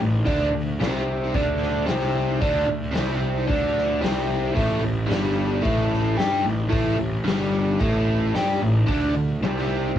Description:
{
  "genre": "garage rock duo or trio",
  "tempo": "112 BPM",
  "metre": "4/4",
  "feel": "straight",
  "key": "unclear",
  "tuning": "A4 = 440 Hz",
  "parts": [
    { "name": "biting overdriven guitar", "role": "riff", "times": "0.0-10.0 s", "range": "G2 to G4", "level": "-23 LUFS", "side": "equal", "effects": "cassette tape" },
    { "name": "fuzz picked electric bass", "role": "bass", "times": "0.0-10.0 s", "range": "G1 to G2", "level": "-26 LUFS", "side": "equal", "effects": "overdrive" },
    { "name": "raw garage drum kit", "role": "drums", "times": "0.3-10.0 s", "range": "hi-hat, kick drum, snare drum", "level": "-28 LUFS", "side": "equal", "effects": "cassette tape" }
  ],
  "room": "light reverb",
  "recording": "home recording on cassette, small room ambience",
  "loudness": "-20 LUFS",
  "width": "side -10 dB against mid",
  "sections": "0.0-10.0 A section",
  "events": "none",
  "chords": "0.3 Csus2; 4.6 Gsus2; 8.9 Csus2"
}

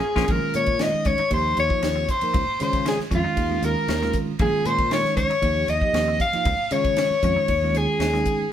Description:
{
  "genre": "electric jazz fusion",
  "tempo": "116 BPM",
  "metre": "4/4",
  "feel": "straight",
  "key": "unclear",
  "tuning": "A4 = 439 Hz",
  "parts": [
    { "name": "breathy soprano saxophone", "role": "melody", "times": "0.0-8.5 s", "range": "F4 to F5", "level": "-23 LUFS", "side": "left 2 dB", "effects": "none" },
    { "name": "overdriven electric guitar", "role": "second line", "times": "0.0-8.5 s", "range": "F4 to F5", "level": "-29 LUFS", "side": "right 2 dB", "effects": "none" },
    { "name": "bell-like tine electric piano", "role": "accompaniment", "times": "0.2-8.4 s", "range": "Eb3 to Bb4", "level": "-28 LUFS", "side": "right 4 dB", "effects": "none" },
    { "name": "clean electric guitar", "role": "stabs", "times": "0.2-8.4 s", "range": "Bb3 to F4", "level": "-36 LUFS", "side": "left 4 dB", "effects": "none" },
    { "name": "fretless electric bass", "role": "bass", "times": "0.2-8.4 s", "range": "Bb1 to Db3", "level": "-27 LUFS", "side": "equal", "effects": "none" },
    { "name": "crisp fusion drum kit", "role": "drums", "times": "0.2-8.4 s", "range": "hi-hat, kick drum, ride cymbal, snare drum", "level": "-28 LUFS", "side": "equal", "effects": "none" }
  ],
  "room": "light reverb",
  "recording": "band playing live in one room",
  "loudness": "-19 LUFS",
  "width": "side -10 dB against mid",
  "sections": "0.3-8.5 A section",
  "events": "drum fill 0.0; tine electric piano fill 0.0; band accent 0.0",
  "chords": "0.3 Bbm7; 1.3 Eb13; 2.3 Db69; 3.4 Ebsus2; 4.4 Bbm7; 5.4 Eb13; 6.5 Db69; 7.5 Ebsus2"
}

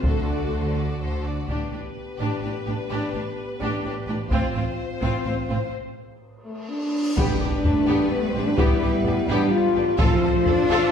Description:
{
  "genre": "cinematic, epic orchestral film score",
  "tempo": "127 BPM",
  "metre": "3/4",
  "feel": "straight",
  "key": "unclear",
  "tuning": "A4 = 440 Hz",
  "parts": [
    { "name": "rich symphonic violin section", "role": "melody", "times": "0.0-10.9 s", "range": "A4 to C5", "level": "-34 LUFS", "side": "left 5 dB", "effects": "none" },
    { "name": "bright studio violin section", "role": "second line", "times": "0.0-10.9 s", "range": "B3 to D5", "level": "-33 LUFS", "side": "left 2 dB", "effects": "none" },
    { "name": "rich symphonic viola section", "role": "accompaniment", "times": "0.0-10.9 s", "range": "C4 to A4", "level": "-30 LUFS", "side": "equal", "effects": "none" },
    { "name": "mellow French horn section", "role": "sustained chords", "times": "0.0-10.9 s", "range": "A3 to G4", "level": "-25 LUFS", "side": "left 2 dB", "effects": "none" },
    { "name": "rich studio double bass section", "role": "bass", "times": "0.0-10.8 s", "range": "A1 to D2", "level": "-31 LUFS", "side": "right 2 dB", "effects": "none" },
    { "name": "rich symphonic cello section", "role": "bass", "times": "0.0-10.9 s", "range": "A2 to D4", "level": "-29 LUFS", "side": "right 2 dB", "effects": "none" },
    { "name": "taiko ensemble", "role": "drums", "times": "0.0-10.7 s", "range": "none", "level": "-25 LUFS", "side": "equal", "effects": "none" },
    { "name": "cymbal swell and impact", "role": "sound effects", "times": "6.6-8.6 s", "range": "none", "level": "-34 LUFS", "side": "equal", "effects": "none" },
    { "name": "warm trombone section", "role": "sustained chords", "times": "7.2-10.9 s", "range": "F3 to C4", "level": "-31 LUFS", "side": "right 4 dB", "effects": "none" },
    { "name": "timpani", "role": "percussion", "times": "7.2-10.7 s", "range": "A2", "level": "-30 LUFS", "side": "left 1 dB", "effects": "none" }
  ],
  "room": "wet scoring stage reverb, RT60 1.5 s",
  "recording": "heard from further back in the room",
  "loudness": "-21 LUFS",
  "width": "side -7 dB against mid",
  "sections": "0.0-1.5 A section; 1.5-7.2 B section; 7.2-10.9 C section",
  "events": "break 5.7-7.2; cymbal swell 6.6-7.2; impact 7.2-8.6",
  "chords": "0.0 D7; 1.5 G/A; 4.3 F/A; 7.2 G/A; 10.0 F/A"
}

